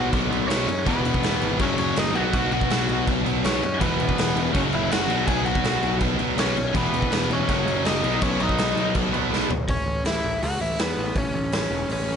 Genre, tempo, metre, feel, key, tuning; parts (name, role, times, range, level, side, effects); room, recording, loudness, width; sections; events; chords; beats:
punk rock; 163 BPM; 4/4; straight; A4 = 440 Hz
overdriven electric guitar; melody; 0.0-12.2 s; B3 to G#5; -27 LUFS; left 1 dB; digital delay
distorted electric guitar; riff; 0.0-9.5 s; E2 to B3; -28 LUFS; right 18 dB; overdrive
heavy high-gain guitar; riff; 0.0-9.5 s; E2 to B3; -30 LUFS; left 1 dB; distortion
sludgy distorted guitar; riff; 0.0-9.5 s; E2 to B3; -29 LUFS; left 12 dB; overdrive
overdriven picked electric bass; bass; 0.0-12.2 s; E1 to F#2; -28 LUFS; equal
raw garage drum kit; drums; 0.1-12.0 s; crash cymbal, hi-hat, kick drum, snare drum, toms; -25 LUFS; equal
little or no reverb; nothing above 11.0 kHz; -20 LUFS; side -7 dB against mid
0.0-9.7 A section; 9.7-12.2 B section
drum fill 9.3-9.7
0.0 B5; 0.9 E; 1.6 F#5; 2.1 B5; 3.8 E5; 4.5 F#5; 5.1 B5; 6.7 E5; 7.5 F#5; 8.0 B; 9.7 A
0.12 0.49 | 0.86 1.23 1.60 1.97 | 2.33 2.70 3.07 3.44 | 3.81 4.17 4.54 4.91 | 5.28 5.65 6.01 6.38 | 6.75 7.12 7.48 7.85 | 8.22 8.58 8.95 9.32 | 9.69 10.05 10.42 10.79 | 11.15 11.52 11.89